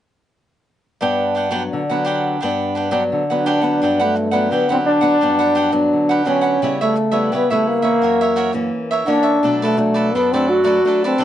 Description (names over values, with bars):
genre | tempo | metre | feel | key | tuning
samba | 85 BPM | 4/4 | straight | G major | A4 = 440 Hz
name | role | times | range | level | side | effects
cavaquinho | accompaniment | 1.0-11.2 s | D4 to F#5 | -22 LUFS | right 3 dB | none
nylon-string guitar | accompaniment | 1.0-11.2 s | F#2 to E4 | -21 LUFS | left 2 dB | none
breathy trombone | melody | 3.4-11.2 s | A3 to F#4 | -16 LUFS | equal | none
room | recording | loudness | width
light reverb | nothing above 10.4 kHz | -15 LUFS | side -11 dB against mid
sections
1.0-3.8 A section; 3.8-11.2 B section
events
none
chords
1.0 Gmaj7; 6.6 C#m7b5; 8.0 F#7; 9.4 Bm7